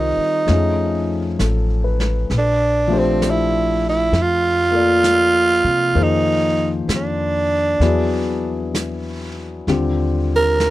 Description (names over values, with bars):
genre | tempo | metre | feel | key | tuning
jazz ballad | 65 BPM | 4/4 | swing 66% on 8ths | F major | A4 = 440 Hz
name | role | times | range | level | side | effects
growling tenor saxophone | melody | 0.0-10.7 s | C4 to Bb4 | -17 LUFS | right 2 dB | none
warm concert grand piano | accompaniment | 0.0-10.7 s | D3 to D5 | -22 LUFS | left 4 dB | none
upright bass | bass | 0.0-10.7 s | A1 to C3 | -22 LUFS | equal | none
vintage brush drum kit | drums | 0.5-10.7 s | brushed snare drum, hi-hat, snare drum | -29 LUFS | right 1 dB | none
room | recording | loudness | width
little or no reverb | none | -15 LUFS | side -16 dB against mid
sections
0.0-10.7 A section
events
none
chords
0.5 F7alt; 2.3 Bbmaj7; 6.0 Fm7; 7.8 E9; 9.7 Ebmaj9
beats
0.48 1.39 | 2.30 3.21 4.12 5.03 | 5.95 6.88 7.80 8.73 | 9.67 10.60